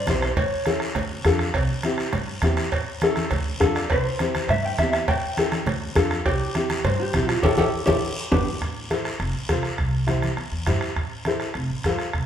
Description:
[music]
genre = latin, cumbia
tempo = 204 BPM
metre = 4/4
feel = straight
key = C major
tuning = A4 = 438 Hz
[part]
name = mellow electric guitar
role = melody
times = 0.0-0.8, 3.9-8.4 s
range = D4 to G5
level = -25 LUFS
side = equal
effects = spring reverb
[part]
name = upright bass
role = bass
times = 0.0-12.3 s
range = F1 to G2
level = -27 LUFS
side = equal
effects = none
[part]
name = dark upright piano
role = accompaniment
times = 0.1-12.1 s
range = B3 to A5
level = -25 LUFS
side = left 2 dB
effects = none
[part]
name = bombo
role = percussion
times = 0.1-12.3 s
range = none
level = -28 LUFS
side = right 2 dB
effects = none
[part]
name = congas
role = percussion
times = 0.1-12.0 s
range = none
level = -30 LUFS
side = right 1 dB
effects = none
[part]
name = guiro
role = percussion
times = 0.1-12.3 s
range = none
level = -34 LUFS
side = left 1 dB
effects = none
[part]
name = cowbell and timbales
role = percussion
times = 0.4-8.4 s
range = none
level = -32 LUFS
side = right 3 dB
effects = none
[sound]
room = moderate large studio reverb, RT60 1.1 s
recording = band playing live in one room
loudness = -21 LUFS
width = side -9 dB against mid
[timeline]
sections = 0.0-8.6 A section; 8.6-12.3 B section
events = upright piano fill 3.5-3.9; band accent 7.4-8.6; drum fill 7.9-8.6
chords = 0.4 A; 1.0 Dm; 1.5 C; 2.7 A; 3.3 Dm; 3.9 C; 5.1 A7; 5.7 Dm; 6.3 C; 7.4 A7; 8.0 N.C.; 8.3 G; 8.6 Am; 9.2 F; 9.8 C; 11.0 Am; 11.6 Fadd9

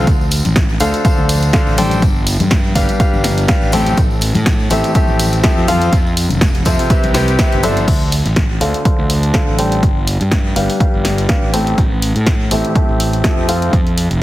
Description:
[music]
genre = piano house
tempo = 123 BPM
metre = 4/4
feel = swing 55% on 16ths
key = D dorian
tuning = A4 = 435 Hz
[part]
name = clear concert grand piano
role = riff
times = 0.0-13.7 s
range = A2 to G5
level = -17 LUFS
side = left 1 dB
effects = sidechain pumping, low-pass filter, ping-pong delay
[part]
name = fuzz fingered electric bass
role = bass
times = 0.0-14.2 s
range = F1 to A2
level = -17 LUFS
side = equal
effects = overdrive, sidechain pumping
[part]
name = electronic kick drum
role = drums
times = 0.1-13.8 s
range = none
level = -15 LUFS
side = equal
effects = none
[part]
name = punchy analog drum machine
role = drums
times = 0.1-14.2 s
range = crash cymbal, hi-hat, snare drum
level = -21 LUFS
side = equal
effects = none
[part]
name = tambourine and congas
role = percussion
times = 0.1-7.9 s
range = none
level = -24 LUFS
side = left 3 dB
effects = none
[sound]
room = light reverb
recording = heavily compressed radio sound, multiband compression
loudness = -12 LUFS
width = side -16 dB against mid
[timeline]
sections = 0.0-7.9 A section; 7.9-14.2 B section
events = drop 0.0-7.9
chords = 0.1 Dm7; 2.0 G7; 3.7 Am7; 5.7 Fmaj7; 6.9 Cmaj7; 7.9 Dm7; 9.8 G7; 11.5 Am7; 13.5 F

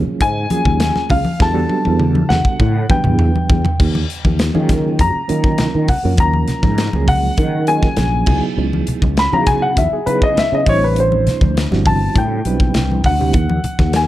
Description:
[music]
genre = electric jazz fusion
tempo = 100 BPM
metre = 4/4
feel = straight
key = unclear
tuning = A4 = 440 Hz
[part]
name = overdriven reed electric piano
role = accompaniment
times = 0.0-13.4 s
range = E#3 to C5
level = -22 LUFS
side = right 5 dB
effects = fast tremolo
[part]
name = sustaining fretless electric bass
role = bass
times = 0.0-14.0 s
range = G1 to D#3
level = -18 LUFS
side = equal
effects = ensemble chorus
[part]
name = warm baby grand piano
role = melody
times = 0.2-14.1 s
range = G#4 to B5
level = -19 LUFS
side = left 2 dB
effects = none
[part]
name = modern studio drum kit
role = drums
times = 0.2-14.1 s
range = crash cymbal, hi-hat, kick drum, snare drum, toms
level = -18 LUFS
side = equal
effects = none
[part]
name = congas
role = percussion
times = 0.5-13.9 s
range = none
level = -22 LUFS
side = left 2 dB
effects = none
[sound]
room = little or no reverb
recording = dark, warm production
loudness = -13 LUFS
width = side -14 dB against mid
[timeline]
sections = 0.0-3.8 A section; 3.8-14.1 A section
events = grand piano solo 0.0-14.1; drum fill 1.4-3.8, 12.9-13.4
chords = 0.0 D#m11; 1.4 Em11; 3.8 D#m11; 8.3 C#m11; 10.7 Am11; 13.4 D#m

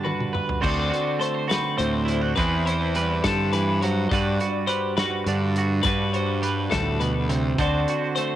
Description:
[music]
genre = math rock and midwest emo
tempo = 69 BPM (dotted quarters)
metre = 6/8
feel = straight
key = G major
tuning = A4 = 440 Hz
[part]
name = twelve-string electric guitar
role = accompaniment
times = 0.0-8.4 s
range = G2 to C5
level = -25 LUFS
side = right 5 dB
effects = none
[part]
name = twelve-string electric guitar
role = arpeggios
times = 0.0-8.4 s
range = A4 to D5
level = -28 LUFS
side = left 8 dB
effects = analog delay
[part]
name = loose indie drum kit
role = drums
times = 0.1-8.3 s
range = crash cymbal, hi-hat, kick drum, snare drum, toms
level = -29 LUFS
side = left 1 dB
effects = cassette tape
[part]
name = fuzz fingered electric bass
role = bass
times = 0.6-7.8 s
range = D2 to G2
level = -24 LUFS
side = left 1 dB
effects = overdrive
[sound]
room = little or no reverb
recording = home recording on cassette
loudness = -21 LUFS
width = side -12 dB against mid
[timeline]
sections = 0.6-8.4 A section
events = drum fill 0.0-0.6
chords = 0.0 Gmaj7; 0.6 D7; 2.4 Cmaj7/E; 4.1 Gmaj7; 7.6 D7

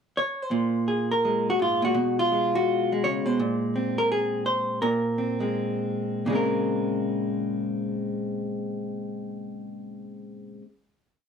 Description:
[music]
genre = solo jazz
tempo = 168 BPM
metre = 4/4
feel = swing 63% on 8ths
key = Bb minor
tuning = A4 = 437 Hz
[part]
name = vintage hollow-body jazz guitar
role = solo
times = 0.2-10.6 s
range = Ab2 to Db5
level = -24 LUFS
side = equal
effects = none
[sound]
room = moderate studio reverb, RT60 0.6 s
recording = none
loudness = -24 LUFS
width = side -6 dB against mid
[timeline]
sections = 0.0-0.5 pickup bar; 0.5-6.2 A section; 6.2-9.1 final chord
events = none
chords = 0.0 N.C.; 0.5 Bbsus2; 1.9 Bsus2; 3.4 Bbsus2; 6.2 Bbm9

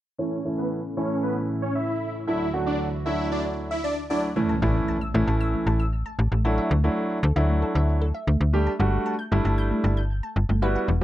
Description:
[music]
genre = pop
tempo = 115 BPM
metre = 4/4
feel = straight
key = unclear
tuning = A4 = 440 Hz
[part]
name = supersaw chords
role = melody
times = 0.2-4.2 s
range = B3 to E5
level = -29 LUFS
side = equal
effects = low-pass filter, tape echo
[part]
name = warm concert grand piano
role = accompaniment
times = 0.2-11.0 s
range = E3 to G4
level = -26 LUFS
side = right 1 dB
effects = low-pass filter
[part]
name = chorused pulse-width pad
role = sustained chords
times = 0.2-4.3 s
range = D2 to F#4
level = -31 LUFS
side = right 1 dB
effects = low-pass filter
[part]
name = glassy wavetable pluck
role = arpeggios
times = 4.4-11.0 s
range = A3 to G6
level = -30 LUFS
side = equal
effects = chorus, tape echo
[part]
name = impact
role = sound effects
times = 4.4-6.4 s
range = none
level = -33 LUFS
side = left 1 dB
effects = none
[part]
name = slap-like FM bass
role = bass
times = 4.6-11.0 s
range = E1 to D2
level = -22 LUFS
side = equal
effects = none
[sound]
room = light reverb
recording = dry, close 1970s-style studio recording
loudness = -22 LUFS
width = side -14 dB against mid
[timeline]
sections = 0.2-4.4 A section; 4.4-11.0 B section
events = filter sweep 0.2-4.4; impact 4.4-6.4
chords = 0.2 A; 2.3 Dadd9; 4.4 A; 6.4 Dadd9; 8.5 Gsus2

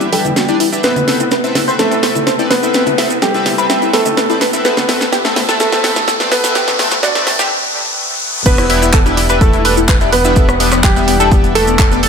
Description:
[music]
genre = progressive house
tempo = 126 BPM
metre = 4/4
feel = straight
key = E minor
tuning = A4 = 441 Hz
[part]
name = warm grand piano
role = melody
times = 0.0-12.1 s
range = G3 to D5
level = -17 LUFS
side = right 1 dB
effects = low-pass filter, tape echo
[part]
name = lush unison pad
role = sustained chords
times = 0.0-12.1 s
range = C3 to F#5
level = -24 LUFS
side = equal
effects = chorus, sidechain pumping
[part]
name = tight sequenced synth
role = arpeggios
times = 0.0-12.1 s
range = A3 to C5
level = -18 LUFS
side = left 3 dB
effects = chorus, phaser, sidechain pumping, tape echo
[part]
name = chorused polysynth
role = stabs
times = 0.0-12.0 s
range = C4 to E5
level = -20 LUFS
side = equal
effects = sidechain pumping, tape echo
[part]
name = round analog bass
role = bass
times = 0.0-12.1 s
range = E1 to A1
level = -22 LUFS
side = equal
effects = sidechain pumping, high-pass filter
[part]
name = house drum kit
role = drums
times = 0.0-12.1 s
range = crash cymbal, handclaps, hi-hat, rim click, snare drum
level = -17 LUFS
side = equal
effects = none
[part]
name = maracas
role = percussion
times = 0.0-12.0 s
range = none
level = -25 LUFS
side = right 6 dB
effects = none
[part]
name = riser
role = sound effects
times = 1.4-8.5 s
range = none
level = -22 LUFS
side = right 1 dB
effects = none
[part]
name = congas and cowbell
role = percussion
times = 0.2-7.4 s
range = none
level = -26 LUFS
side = right 2 dB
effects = sidechain pumping on perc
[part]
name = electronic kick drum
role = drums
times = 8.5-11.9 s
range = none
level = -12 LUFS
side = equal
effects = none
[sound]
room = moderate lush hall reverb, RT60 2.3 s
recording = high-pass filter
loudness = -10 LUFS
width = side -6 dB against mid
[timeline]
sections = 0.0-8.5 A section; 8.5-12.1 B section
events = build-up 0.0-8.5; drum fill 0.0-7.5; filter sweep on synth arpeggio sound 0.0-8.5; filter sweep on analog synth pad 0.0-8.5; filter sweep on grand piano 0.0-8.5; filter sweep 0.0-8.5; riser 1.4-8.5; break 7.5-8.5; drop 8.5-12.1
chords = 0.0 Em7; 0.8 Amadd9; 8.5 Em7

